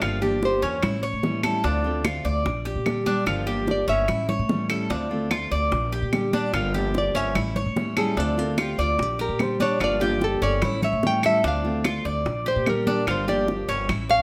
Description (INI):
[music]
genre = latin, Cuban son and guajira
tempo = 147 BPM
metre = 4/4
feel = straight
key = D minor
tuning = A4 = 440 Hz
[part]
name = fingerpicked steel-string acoustic guitar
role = accompaniment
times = 0.0-13.9 s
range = D3 to G4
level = -31 LUFS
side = equal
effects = none
[part]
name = Cuban tres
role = arpeggios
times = 0.0-14.2 s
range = C#4 to D5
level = -30 LUFS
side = equal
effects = none
[part]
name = upright bass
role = bass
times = 0.0-14.2 s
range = G1 to Bb2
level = -31 LUFS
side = equal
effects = none
[part]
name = bongos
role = percussion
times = 0.0-14.2 s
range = none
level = -36 LUFS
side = equal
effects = none
[part]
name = claves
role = percussion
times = 0.0-14.1 s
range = none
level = -34 LUFS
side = equal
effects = none
[part]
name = congas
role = percussion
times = 0.0-14.2 s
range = none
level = -32 LUFS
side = equal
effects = none
[part]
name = nylon-string guitar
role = melody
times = 0.5-1.0, 3.7-4.3, 7.0-14.2 s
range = F4 to G5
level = -27 LUFS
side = equal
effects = none
[sound]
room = moderate large studio reverb, RT60 1.0 s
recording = none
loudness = -24 LUFS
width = mono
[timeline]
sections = 0.0-14.2 A section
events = nylon-string guitar solo 0.0-14.2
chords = 0.0 Gm7; 0.8 A7; 1.6 Dm7; 2.5 Bb6; 3.3 Gm7; 4.1 A7; 4.9 Dm7; 5.7 Bb6; 6.5 Gm7; 7.4 A7; 8.2 Dm7; 9.0 Bb6; 9.8 Gm7; 10.6 A7; 11.4 Dm7; 12.3 Bb6; 13.1 Gm7